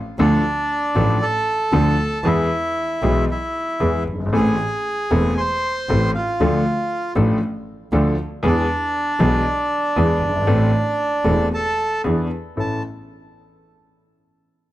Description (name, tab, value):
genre	tango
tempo	116 BPM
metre	4/4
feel	rubato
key	A harmonic minor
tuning	A4 = 439 Hz
part	bandoneon	melody	0.2-12.8 s	D4 to C6	-22 LUFS	right 1 dB	none
part	warm concert grand piano	accompaniment	0.2-12.8 s	E1 to A4	-20 LUFS	left 1 dB	none
part	rich double bass	bass	0.2-12.8 s	E1 to E2	-22 LUFS	right 1 dB	none
room	small room reverb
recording	dry, close 1970s-style studio recording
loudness	-17 LUFS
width	side -15 dB against mid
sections	0.0-12.6 A section; 12.6-14.6 B section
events	none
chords	0.2 Dm; 2.2 E; 4.3 Am; 6.4 Dm; 8.4 E; 10.5 Am; 12.0 E7; 12.6 A